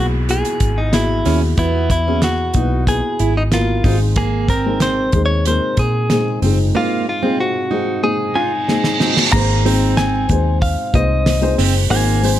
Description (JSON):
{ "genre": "piano-driven pop", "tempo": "93 BPM", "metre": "4/4", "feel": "straight", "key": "unclear", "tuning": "A4 = 440 Hz", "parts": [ { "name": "direct-recorded clean electric guitar", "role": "melody", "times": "0.0-12.4 s", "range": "Eb4 to Bb5", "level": "-21 LUFS", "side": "equal", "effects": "none" }, { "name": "dark upright piano", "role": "accompaniment", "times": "0.0-12.4 s", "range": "Ab2 to C5", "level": "-21 LUFS", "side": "left 3 dB", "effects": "none" }, { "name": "vintage muted fingered electric bass", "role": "bass", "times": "0.0-12.4 s", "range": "Gb1 to Bb2", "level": "-18 LUFS", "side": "equal", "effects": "none" }, { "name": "downlifter and reverse cymbal", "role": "sound effects", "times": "0.0-9.3 s", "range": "none", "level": "-23 LUFS", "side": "right 4 dB", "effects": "none" }, { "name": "damped 70s drum kit", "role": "drums", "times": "0.3-12.4 s", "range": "crash cymbal, hi-hat, kick drum, snare drum", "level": "-20 LUFS", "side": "equal", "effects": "none" }, { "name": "fingerpicked plugged-in steel-string acoustic guitar", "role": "riff", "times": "1.3-12.2 s", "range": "Bb3 to F4", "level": "-23 LUFS", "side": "right 7 dB", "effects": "none" } ], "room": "light reverb, small room ambience", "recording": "none", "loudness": "-14 LUFS", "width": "side -12 dB against mid", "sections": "0.0-9.3 A section; 9.3-12.4 B section", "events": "reverse cymbal 8.5-9.3; drum fill 8.7-9.3", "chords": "0.0 Eadd9; 3.8 Ab" }